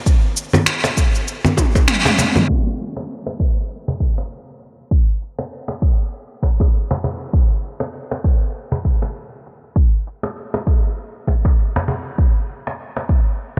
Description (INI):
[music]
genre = downtempo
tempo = 99 BPM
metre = 4/4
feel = swing 57% on 16ths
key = none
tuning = none
[part]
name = electronic kick drum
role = drums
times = 0.1-13.2 s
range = none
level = -18 LUFS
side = equal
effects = none
[part]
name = organic electronic drum kit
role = drums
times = 0.1-13.6 s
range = congas, crash cymbal, finger snaps, shaker, toms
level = -20 LUFS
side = equal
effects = low-pass filter on perc, low-pass filter on snare, low-pass filter on toms, low-pass filter on cymbals, gated reverb
[part]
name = cajon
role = percussion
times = 0.5-13.6 s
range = none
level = -28 LUFS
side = equal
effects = none
[sound]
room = moderate lush hall reverb, RT60 3.2 s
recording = bright 1980s-style digital production, low-pass filter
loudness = -19 LUFS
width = mono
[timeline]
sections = 0.0-2.5 A section; 2.5-13.6 B section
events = drum fill 1.6-2.5; band accent 1.9-2.2; filter sweep 2.5-13.6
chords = none